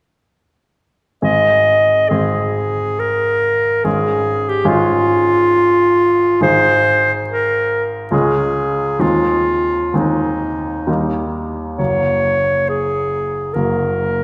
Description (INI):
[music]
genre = classical, romantic duo for clarinet and grand piano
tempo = 59-73 BPM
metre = 3/4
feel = rubato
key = Ab major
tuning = A4 = 441 Hz
[part]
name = bright clarinet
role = melody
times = 1.2-14.2 s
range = Eb4 to Eb5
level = -17 LUFS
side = equal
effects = none
[part]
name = clear baby grand piano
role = accompaniment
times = 1.2-14.2 s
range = Gb1 to Bb4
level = -22 LUFS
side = equal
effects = none
[sound]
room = wet concert hall reverb, RT60 2.1 s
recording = none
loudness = -16 LUFS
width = mono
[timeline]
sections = 1.2-14.2 A section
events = none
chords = 1.2 Ab; 3.9 Db/Ab; 6.4 Ab; 8.1 Db; 9.0 Ab/Eb; 10.9 Eb; 11.8 Gb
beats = | 1.24 2.12 3.01 | 3.85 4.68 5.51 | 6.43 7.28 8.12 | 9.01 9.95 10.87 | 11.79 12.69 13.57